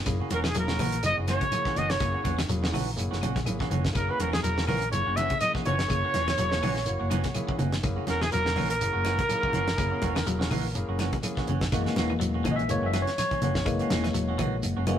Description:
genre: afrobeat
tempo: 124 BPM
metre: 4/4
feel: swing 56% on 16ths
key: F# mixolydian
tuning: A4 = 439 Hz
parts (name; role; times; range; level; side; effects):
- hollow-body short-scale fingered electric bass; bass; 0.0-15.0 s; E1 to A#1; -31 LUFS; equal; none
- barky tine electric piano; accompaniment; 0.1-15.0 s; E3 to A#5; -33 LUFS; left 3 dB; none
- electric guitar at the edge of break-up; arpeggios; 0.1-14.6 s; C#3 to F#3; -36 LUFS; left 3 dB; spring reverb
- damped 70s drum kit; drums; 0.1-15.0 s; hi-hat, kick drum, snare drum; -32 LUFS; equal; none
- claves; percussion; 0.1-15.0 s; none; -45 LUFS; left 7 dB; none
- shekere; percussion; 0.1-15.0 s; none; -38 LUFS; right 1 dB; none
- semi-hollow electric guitar; stabs; 0.2-15.0 s; E3 to F#4; -35 LUFS; right 4 dB; tape echo
- breathy trumpet; melody; 0.3-11.2 s; G#4 to E5; -29 LUFS; equal; none
- raspy alto saxophone; second line; 0.3-11.2 s; G#4 to E5; -37 LUFS; right 5 dB; none
- congas; percussion; 0.3-15.0 s; none; -33 LUFS; equal; none
room: moderate stone room reverb, RT60 1.2 s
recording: rough rehearsal-room recording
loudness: -24 LUFS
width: side -10 dB against mid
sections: 0.0-11.7 A section; 11.7-15.0 B section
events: tine electric piano fill 2.5-4.0, 6.9-7.8; tine electric piano solo 11.7-15.0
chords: 0.0 F#7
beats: | 0.06 0.55 1.04 1.52 | 2.01 2.49 2.98 3.46 | 3.95 4.44 4.92 5.41 | 5.89 6.38 6.87 7.35 | 7.84 8.32 8.81 9.29 | 9.78 10.27 10.75 11.24 | 11.72 12.21 12.70 13.18 | 13.67 14.15 14.64

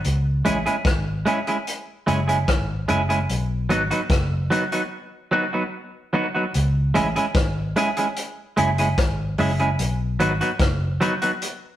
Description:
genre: roots reggae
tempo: 74 BPM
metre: 4/4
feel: straight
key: C# minor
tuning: A4 = 441 Hz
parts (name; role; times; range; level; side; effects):
- vintage drum kit; drums; 0.0-11.6 s; hi-hat, kick drum, rim click; -24 LUFS; left 1 dB; none
- vintage muted fingered electric bass; bass; 0.1-11.0 s; F#1 to C#2; -23 LUFS; equal; none
- clean electric guitar; accompaniment; 0.4-11.3 s; F#3 to G#4; -22 LUFS; right 1 dB; none
room: wet stone room reverb, RT60 1.1 s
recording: rough rehearsal-room recording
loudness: -20 LUFS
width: side -12 dB against mid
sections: 0.0-6.5 A section; 6.5-11.8 B section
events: break 4.9-6.5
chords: 0.0 C#m; 3.3 B; 6.5 C#m; 9.8 B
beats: | 0.05 0.86 1.67 2.48 | 3.29 4.11 4.92 5.73 | 6.54 7.36 8.17 8.98 | 9.79 10.60 11.41

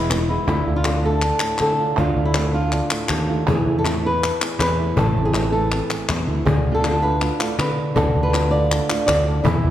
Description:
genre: flamenco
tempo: 160 BPM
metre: 4/4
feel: straight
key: unclear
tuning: A4 = 440 Hz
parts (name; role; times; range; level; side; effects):
- flamenco guitar; melody; 0.0-9.7 s; E2 to D5; -22 LUFS; equal; none
- flamenco guitar; stabs; 0.0-9.7 s; D3 to F4; -27 LUFS; right 4 dB; none
- sustaining fretless electric bass; bass; 0.0-9.7 s; E1 to D3; -22 LUFS; equal; none
- cajon; percussion; 0.1-9.7 s; none; -26 LUFS; left 2 dB; none
- palmas hand claps; percussion; 0.1-9.6 s; none; -27 LUFS; left 1 dB; none
room: moderate concert hall reverb, RT60 1.8 s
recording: recorded in a church or concert hall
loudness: -17 LUFS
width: side -12 dB against mid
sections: 0.5-9.7 A section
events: none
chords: 0.5 Dm; 3.5 Esus4; 5.0 Am; 6.5 Dm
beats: 0.10 | 0.47 0.85 1.22 1.60 | 1.97 2.35 2.72 3.10 | 3.47 3.85 4.22 4.60 | 4.97 5.35 5.72 6.09 | 6.47 6.84 7.22 7.59 | 7.96 8.34 8.71 9.08 | 9.46

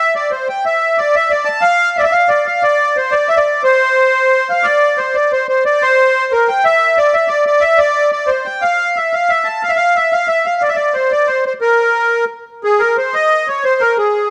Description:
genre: musette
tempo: 180 BPM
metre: 3/4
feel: rubato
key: unclear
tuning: A4 = 440 Hz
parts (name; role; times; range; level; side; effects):
- accordion; solo; 0.0-14.3 s; Ab4 to A5; -14 LUFS; equal; light tremolo tuning
room: moderate recital hall reverb, RT60 1.6 s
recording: dark, warm production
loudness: -14 LUFS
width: mono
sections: 0.0-12.6 A section; 12.6-14.3 B section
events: none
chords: none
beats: 0.30 | 0.64 0.98 1.31 | 1.64 1.97 2.30 | 2.63 2.96 3.29 | 3.63 3.97 4.31 | 4.65 4.99 5.32 | 5.65 5.98 6.31 | 6.64 6.97 7.30 | 7.63 7.96 8.30 | 8.64 8.97 9.31 | 9.64 9.97 10.30 | 10.63 10.95 11.28 | 11.61 11.95 12.29 | 12.63 12.96 13.30 | 13.64 13.97

